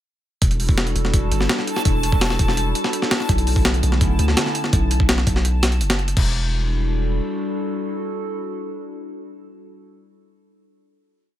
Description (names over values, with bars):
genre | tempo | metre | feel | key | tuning
drum and bass, jungle | 167 BPM | 4/4 | straight | E minor | A4 = 440 Hz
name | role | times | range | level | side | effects
warbly tape-like pad | sustained chords | 0.5-9.8 s | D3 to A4 | -27 LUFS | left 1 dB | chorus, built-in reverb, vintage 12-bit sampler grit
long sustained 808-style bass | bass | 0.4-7.2 s | E1 to D2 | -20 LUFS | equal | none
breakbeat sampler-style drum kit | drums | 0.4-6.2 s | crash cymbal, hi-hat, kick drum, snare drum | -20 LUFS | equal | none
backwards swelling texture | texture | 1.2-4.7 s | A5 | -30 LUFS | equal | built-in reverb
room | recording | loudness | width
digital ambience | none | -18 LUFS | side -12 dB against mid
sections
0.4-6.2 drop; 6.2-9.0 final chord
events
drop 0.4-6.2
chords
0.4 Em11; 3.3 Bm11; 6.2 Em11